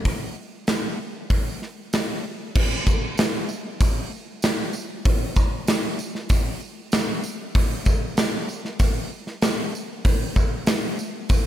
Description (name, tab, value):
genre	rock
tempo	96 BPM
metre	4/4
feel	straight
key	none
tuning	none
part	gated 80s drum kit	drums	0.1-11.4 s	crash cymbal, hi-hat, kick drum, snare drum	-22 LUFS	equal	none
part	tambourine	percussion	0.7-11.4 s	none	-40 LUFS	right 5 dB	none
room	light reverb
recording	none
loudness	-21 LUFS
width	side -12 dB against mid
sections	0.0-2.6 A section; 2.6-11.5 B section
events	none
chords	none